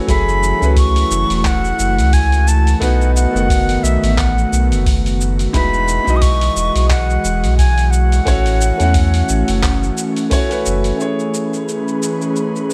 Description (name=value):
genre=sunset chillout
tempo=88 BPM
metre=4/4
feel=swing 56% on 16ths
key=unclear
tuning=A4 = 440 Hz
part: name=clear concert grand piano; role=accompaniment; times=0.0-12.7 s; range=D#3 to F#5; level=-25 LUFS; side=equal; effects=digital delay
part: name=airy breathy pad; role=sustained chords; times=0.0-12.7 s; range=D#3 to D#5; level=-24 LUFS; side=equal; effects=chorus
part: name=bright reedy concert flute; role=melody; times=0.1-10.3 s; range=E5 to D#6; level=-23 LUFS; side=equal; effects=tape echo
part: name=warm sub bass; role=bass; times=0.1-10.9 s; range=E1 to E2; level=-18 LUFS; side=equal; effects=tube saturation
part: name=dusty soul sampler-style drum kit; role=drums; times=0.1-12.7 s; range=cabasa, handclaps, hi-hat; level=-28 LUFS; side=equal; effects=studio reverb
part: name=electronic kick drum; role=drums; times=0.1-10.5 s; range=none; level=-20 LUFS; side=equal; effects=studio reverb
part: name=wind-like tuned noise texture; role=texture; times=11.2-12.7 s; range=B4 to B5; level=-33 LUFS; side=equal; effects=built-in reverb
room=light reverb, digital ambience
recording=none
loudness=-15 LUFS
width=mono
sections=0.0-11.0 A section; 11.0-12.7 B section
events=none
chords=0.1 F#m9; 2.8 B7; 5.5 Emaj9; 8.3 A6; 11.0 Amaj7